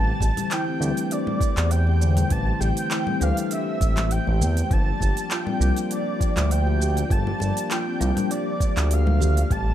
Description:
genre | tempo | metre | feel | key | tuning
organic downtempo | 100 BPM | 4/4 | swing 54% on 16ths | G dorian | A4 = 436 Hz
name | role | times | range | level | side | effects
breathy flute-like synth lead | melody | 0.0-9.7 s | D5 to A5 | -29 LUFS | right 1 dB | ensemble chorus, ping-pong delay
tine electric piano | accompaniment | 0.0-9.7 s | E3 to G4 | -31 LUFS | left 4 dB | medium stereo tremolo, sidechain pumping, ping-pong delay
warm analog pad | sustained chords | 0.0-9.7 s | E3 to D5 | -34 LUFS | equal | chorus, sidechain pumping
marimba with soft mallets | arpeggios | 0.0-9.7 s | D3 to G4 | -31 LUFS | left 1 dB | ping-pong delay
smooth synth bass | bass | 0.0-9.7 s | G1 to E2 | -21 LUFS | equal | none
electronic kick drum | drums | 0.2-9.6 s | none | -23 LUFS | equal | overdrive, small room ambience
organic electronic drum kit | drums | 0.2-9.6 s | congas, handclaps, hi-hat, shaker | -29 LUFS | left 2 dB | overdrive, small room ambience
bongos and congas | percussion | 0.2-9.5 s | none | -35 LUFS | left 2 dB | none
room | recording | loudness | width
little or no reverb | none | -20 LUFS | side -11 dB against mid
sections
0.0-9.7 A section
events
none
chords
0.0 Am7; 4.7 Gm7

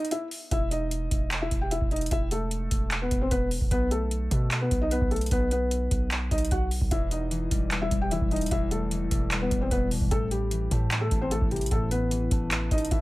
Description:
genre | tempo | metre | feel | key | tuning
hip hop, trap | 150 BPM | 4/4 | half-time | E harmonic minor | A4 = 441 Hz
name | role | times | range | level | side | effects
felt-muted upright piano | melody | 0.0-13.0 s | G3 to G5 | -30 LUFS | left 1 dB | none
booming analog drum machine | drums | 0.0-13.0 s | handclaps, hi-hat, kick drum | -28 LUFS | equal | none
long sustained 808-style bass | bass | 0.5-13.0 s | E1 to B2 | -30 LUFS | equal | none
concert harp | accompaniment | 6.9-13.0 s | E2 to B3 | -32 LUFS | left 3 dB | none
room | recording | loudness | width
small room ambience | none | -24 LUFS | side -19 dB against mid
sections
0.0-13.0 A section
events
break 0.0-0.5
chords
0.0 N.C.; 6.9 Em; 10.1 Asus2

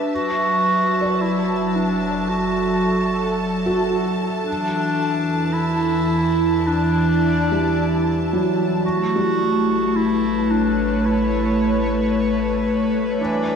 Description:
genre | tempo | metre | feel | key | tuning
ambient | 55 BPM | 4/4 | straight | unclear | A4 = 440 Hz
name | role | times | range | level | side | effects
airy breathy pad | sustained chords | 0.0-13.6 s | E3 to E5 | -20 LUFS | equal | chorus
felt-muted upright piano | arpeggios | 0.0-13.2 s | F#3 to D5 | -28 LUFS | equal | shimmer reverb, ping-pong delay
deep rumbling drone | bass | 1.0-13.6 s | F#1 to E2 | -32 LUFS | equal | built-in reverb
clear symphonic violin section | texture | 0.0-13.6 s | E5 to A5 | -31 LUFS | left 1 dB | shimmer reverb
bright clarinet | melody | 0.1-12.1 s | D4 to F#4 | -23 LUFS | right 1 dB | shimmer reverb, ping-pong delay
hand-pumped harmonium | drone | 13.2-13.6 s | E3 to D4 | -24 LUFS | left 2 dB | none
room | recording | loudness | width
wet concert hall reverb, RT60 2.1 s | dark, warm production | -17 LUFS | side -6 dB against mid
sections
0.0-13.6 A section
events
fade-in on synth drone 0.0-13.6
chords
0.1 Dadd9/F#; 4.5 Em7; 8.8 A9

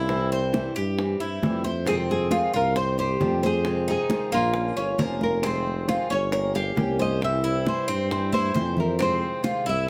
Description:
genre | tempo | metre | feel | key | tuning
latin, Cuban son and guajira | 135 BPM | 4/4 | straight | F minor | A4 = 440 Hz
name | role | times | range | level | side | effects
nylon-string guitar | melody | 0.0-9.9 s | E4 to F5 | -30 LUFS | equal | none
picked old ladder-braced acoustic guitar | accompaniment | 0.0-9.7 s | C3 to G4 | -34 LUFS | equal | none
Cuban tres | arpeggios | 0.0-9.9 s | Bb3 to C5 | -31 LUFS | equal | none
warm tuba | bass | 0.0-9.9 s | F1 to G2 | -30 LUFS | equal | none
bongos | percussion | 0.1-9.9 s | none | -33 LUFS | equal | none
congas | percussion | 0.1-9.9 s | none | -33 LUFS | equal | none
room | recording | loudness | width
light reverb | none | -24 LUFS | mono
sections
0.0-1.9 A section; 1.9-9.9 B section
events
drum fill 8.3-9.0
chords
0.1 C; 1.9 Fm7; 2.8 Csus4; 3.7 Fm7; 4.5 Bbm; 5.4 Fm7; 6.3 Gdim; 7.2 C; 9.0 Fm7

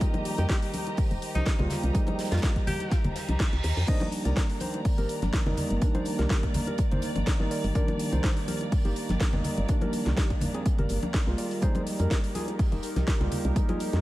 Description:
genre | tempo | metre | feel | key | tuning
deep house | 124 BPM | 4/4 | swing 54% on 16ths | C minor | A4 = 439 Hz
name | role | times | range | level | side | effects
warbly tape-like pad | sustained chords | 0.0-14.0 s | Eb3 to D5 | -38 LUFS | right 1 dB | chorus, built-in reverb, sidechain pumping
felt-muted upright piano | stabs | 0.0-14.0 s | Eb3 to F4 | -34 LUFS | right 1 dB | vintage 12-bit sampler grit, sidechain pumping, diffuse ambient delay
electronic kick drum | drums | 0.0-13.7 s | none | -26 LUFS | equal | overdrive, studio ambience
house drum kit | drums | 0.0-14.0 s | crash cymbal, hi-hat, snare drum | -36 LUFS | left 1 dB | overdrive, studio ambience
modern studio drum kit | drums | 0.0-13.9 s | hi-hat, snare drum | -45 LUFS | right 3 dB | none
dark studio string section | texture | 0.0-14.0 s | Eb3 to Bb5 | -40 LUFS | right 1 dB | sidechain pumping
bongos and congas | percussion | 0.1-13.8 s | none | -34 LUFS | left 1 dB | none
bright alto saxophone | melody | 0.4-3.0 s | Eb4 to G4 | -38 LUFS | equal | ping-pong delay
woody FM bass | bass | 0.4-14.0 s | F1 to F2 | -27 LUFS | equal | tube saturation, sidechain pumping
reverse cymbal | sound effects | 3.1-3.9 s | none | -38 LUFS | right 4 dB | none
overdriven tine electric piano | melody | 3.9-14.0 s | C4 to Eb5 | -37 LUFS | left 1 dB | medium tremolo, diffuse ambient delay
room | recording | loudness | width
studio reverb | vinyl crackle | -24 LUFS | side -17 dB against mid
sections
0.0-14.0 A section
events
reverse cymbal 3.1-3.9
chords
0.0 Fm11; 3.9 Cm9 (rootless); 11.4 Fm11

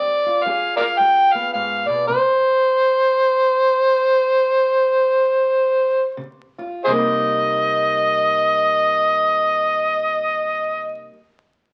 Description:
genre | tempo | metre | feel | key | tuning
acoustic country blues, solo or duo | free time | none | none | C minor | A4 = 440 Hz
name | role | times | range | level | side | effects
overdriven harmonica | melody | 0.0-11.0 s | Ab4 to G5 | -18 LUFS | equal | none
fingerpicked steel-string acoustic guitar | accompaniment | 0.0-2.5, 6.2-11.2 s | G2 to Bb4 | -30 LUFS | equal | none
room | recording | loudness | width
moderate large studio reverb, RT60 0.9 s | very old 78 rpm record, vinyl crackle | -18 LUFS | mono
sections
0.0-6.9 A section; 6.9-11.7 B section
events
slowing down 2.1-6.9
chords
0.0 G7b9; 2.1 N.C.; 6.2 Db; 6.9 Cm7

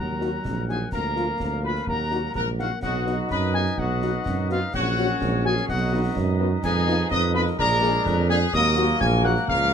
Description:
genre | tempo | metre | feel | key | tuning
military-style march for wind band | 126 BPM | 2/4 | straight | Eb minor | A4 = 440 Hz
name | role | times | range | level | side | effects
dark trumpet section | melody | 0.0-9.7 s | F4 to Ab5 | -28 LUFS | left 1 dB | none
bright piccolo | second line | 0.0-9.7 s | F5 to Ab6 | -28 LUFS | left 3 dB | none
warm woodwind section | second line | 0.0-9.7 s | F4 to Gb5 | -33 LUFS | left 3 dB | none
mellow trombone section | sustained chords | 0.0-9.7 s | Eb3 to D#4 | -31 LUFS | left 1 dB | none
mellow tuba | bass | 0.0-9.7 s | Bb1 to F#2 | -24 LUFS | right 3 dB | none
mellow French horn section | accompaniment | 0.2-9.3 s | Bb3 to Ab4 | -28 LUFS | left 4 dB | none
concert snare drum, concert bass drum and clash cymbals | drums | 0.2-9.7 s | none | -34 LUFS | equal | none
room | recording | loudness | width
little or no reverb | close, detailed microphones | -21 LUFS | side -7 dB against mid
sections
0.0-9.7 A section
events
none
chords
0.0 Ebm; 0.9 Bb/D; 1.9 Ebm; 2.8 B; 4.7 Gb/Bb; 5.7 B; 6.6 Fm7b5; 7.6 Bb7; 8.5 Ebm

